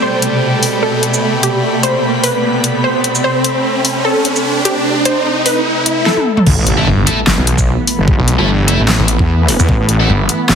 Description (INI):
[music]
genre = heavy wobble dubstep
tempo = 149 BPM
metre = 4/4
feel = swing 55% on 16ths, half-time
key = A minor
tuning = A4 = 438 Hz
[part]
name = wide unison pluck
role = melody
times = 0.0-6.3 s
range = G4 to C5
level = -18 LUFS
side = equal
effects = ping-pong delay
[part]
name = supersaw chords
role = sustained chords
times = 0.0-10.6 s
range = B2 to C4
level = -19 LUFS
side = right 1 dB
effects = phaser, sidechain pumping, low-pass filter
[part]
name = riser and impact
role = sound effects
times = 0.0-8.1 s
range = none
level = -18 LUFS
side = right 1 dB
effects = none
[part]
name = airy breathy pad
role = texture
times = 0.0-10.6 s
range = A4 to B5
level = -23 LUFS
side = equal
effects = chorus, sidechain pumping
[part]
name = dubstep drum kit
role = drums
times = 0.2-10.6 s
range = crash cymbal, handclaps, hi-hat, shaker, snare drum, toms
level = -15 LUFS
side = left 1 dB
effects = overdrive
[part]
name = wobble bass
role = bass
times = 6.5-10.1 s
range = G1 to E2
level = -13 LUFS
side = equal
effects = chorus, overdrive
[part]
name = electronic kick drum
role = drums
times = 6.5-9.8 s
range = none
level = -14 LUFS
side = equal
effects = overdrive
[part]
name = distorted electric guitar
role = stabs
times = 6.8-10.1 s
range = A3 to A4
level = -19 LUFS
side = equal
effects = overdrive, ping-pong delay
[part]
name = snarling distorted saw bass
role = bass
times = 6.9-10.6 s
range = G1 to E2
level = -13 LUFS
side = equal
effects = distortion, overdrive
[sound]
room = moderate plate reverb, RT60 1.5 s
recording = heavily compressed radio sound, multiband compression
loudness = -11 LUFS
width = side -7 dB against mid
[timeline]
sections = 0.0-6.5 A section; 6.5-10.6 B section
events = build-up 0.0-6.5; riser 0.0-6.1; drum fill 6.1-6.5; drop 6.5-10.6; impact 6.5-8.1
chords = 0.0 Amadd9; 6.5 Asus2